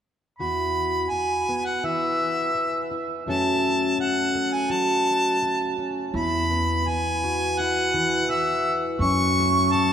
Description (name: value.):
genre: acoustic folk duo or small band.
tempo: 84 BPM.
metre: 4/4.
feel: straight.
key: E major.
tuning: A4 = 441 Hz.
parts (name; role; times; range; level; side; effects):
clear harmonica; melody; 0.4-9.9 s; E5 to C#6; -23 LUFS; equal; none.
fingerpicked plugged-in steel-string acoustic guitar; accompaniment; 0.4-9.9 s; E2 to A4; -26 LUFS; left 1 dB; none.
upright bass; bass; 6.1-9.9 s; E2 to F#2; -28 LUFS; equal; none.
room: wet cathedral reverb, RT60 4.0 s.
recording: recorded in a church or concert hall.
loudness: -21 LUFS.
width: side -8 dB against mid.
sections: 0.4-6.1 A section; 6.1-9.9 B section.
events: none.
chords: 0.4 Esus2; 3.3 F#m; 6.1 Esus2; 9.0 F#m.